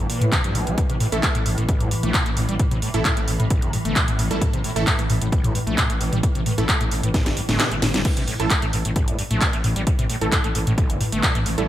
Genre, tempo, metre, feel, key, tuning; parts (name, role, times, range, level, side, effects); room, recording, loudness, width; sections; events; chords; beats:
driving peak-time techno; 132 BPM; 4/4; straight; A4 = 440 Hz
screaming distorted acid line; riff; 0.0-11.6 s; A1 to A3; -27 LUFS; equal; distortion, lush chorus, sidechain pumping, digital delay
growling FM bass; bass; 0.0-11.7 s; G1 to A2; -26 LUFS; equal; sidechain pumping
swarming drone; drone; 0.0-11.7 s; A2 to E3; -30 LUFS; equal; built-in reverb, ensemble chorus, sidechain pumping
techno drum kit; drums; 0.1-11.7 s; crash cymbal, handclaps, hi-hat, snare drum, toms; -23 LUFS; equal; overdrive, gated reverb
electronic kick drum; drums; 0.3-11.3 s; -22 LUFS; equal
rave stab; stabs; 1.1-11.7 s; A3 to A4; -28 LUFS; right 3 dB; chorus, built-in reverb, sidechain pumping, digital delay
light reverb; bright 1980s-style digital production; -18 LUFS; side -13 dB against mid
0.0-11.7 A section
drum fill 7.1-8.1; kick drops out 7.6-8.1
0.0 A5
0.32 | 0.78 1.23 1.69 2.14 | 2.60 3.05 3.50 3.96 | 4.41 4.87 5.32 5.78 | 6.23 6.69 7.14 7.60 | 8.05 8.51 8.96 9.41 | 9.87 10.32 10.78 11.23